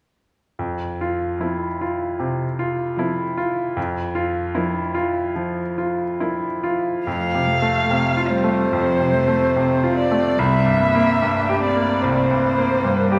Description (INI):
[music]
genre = classical, slow romantic movement for piano quartet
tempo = 74 BPM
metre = 4/4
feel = uneven beats, rubato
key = F major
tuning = A4 = 440 Hz
[part]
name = bright grand piano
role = accompaniment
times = 0.6-13.2 s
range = C2 to G4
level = -23 LUFS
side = equal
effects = none
[part]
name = dark violin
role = melody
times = 1.4-13.2 s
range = A4 to F5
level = -24 LUFS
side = equal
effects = none
[part]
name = warm cello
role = second line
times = 1.4-13.2 s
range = F3 to Bb3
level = -29 LUFS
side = equal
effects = none
[part]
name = dark viola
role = accompaniment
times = 1.4-13.2 s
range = A3 to D4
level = -29 LUFS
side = equal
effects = none
[sound]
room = wet scoring stage reverb, RT60 1.9 s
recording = heard from further back in the room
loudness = -21 LUFS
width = mono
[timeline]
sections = 0.6-7.1 A section; 7.1-13.2 B section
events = none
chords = 0.6 F; 3.8 Bb/F; 7.1 F; 10.4 C7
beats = | 0.60 1.42 2.21 2.99 | 3.77 4.56 5.37 6.21 | 7.07 7.90 8.72 9.55 | 10.38 11.20 12.03 12.83